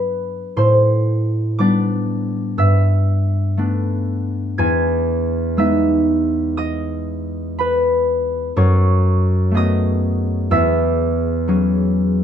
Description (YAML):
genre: classical, solo harp piece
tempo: 60 BPM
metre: 4/4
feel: rubato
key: unclear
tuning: A4 = 441 Hz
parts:
  - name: concert harp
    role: solo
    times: 0.0-12.2 s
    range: E2 to G#6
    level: -15 LUFS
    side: equal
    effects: none
room: light reverb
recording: none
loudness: -16 LUFS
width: side -8 dB against mid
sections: 0.0-12.2 A section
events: none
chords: 0.0 Gmaj7; 0.6 Am11; 2.6 G69; 4.6 Emaj7; 8.6 F#m11; 10.5 E69